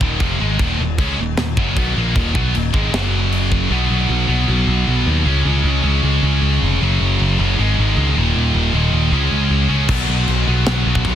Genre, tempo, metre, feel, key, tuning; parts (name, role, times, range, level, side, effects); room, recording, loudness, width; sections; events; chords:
heavy metal; 155 BPM; 4/4; straight; Eb minor; A4 = 440 Hz
scooped high-gain guitar; riff; 0.0-11.2 s; Eb2 to Db4; -18 LUFS; equal; distortion
modern bright picked electric bass; bass; 0.0-11.2 s; Eb1 to D#2; -18 LUFS; equal
tight metal drum kit; drums; 0.0-3.6, 9.9-11.1 s; china cymbal, crash cymbal, kick drum, snare drum; -21 LUFS; equal
little or no reverb; dense, heavily limited modern master; -14 LUFS; side -10 dB against mid
0.0-3.7 A section; 3.7-11.2 B section
drum fill 3.5
0.0 Ebm; 2.9 Gb5; 3.7 B5; 5.3 Db5; 6.8 Gb5; 7.6 Ab5; 8.2 Eb5; 9.1 Db5; 9.9 B5